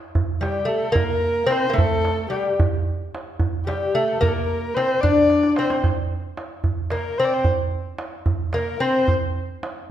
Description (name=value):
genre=Persian modal ensemble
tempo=74 BPM (dotted quarters)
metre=6/8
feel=straight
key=unclear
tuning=A4 = 442 Hz
part: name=tombak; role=percussion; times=0.2-9.8 s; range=none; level=-23 LUFS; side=right 2 dB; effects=none
part: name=lute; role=melody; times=0.4-9.1 s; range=G3 to D4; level=-21 LUFS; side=left 1 dB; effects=none
part: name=dark kamancheh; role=second line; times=0.4-9.1 s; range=G4 to D5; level=-26 LUFS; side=left 2 dB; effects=slapback echo
room=wet recital hall reverb, RT60 1.3 s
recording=none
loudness=-19 LUFS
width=side -11 dB against mid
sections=0.0-9.9 A section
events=drum fill 5.3-5.8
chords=none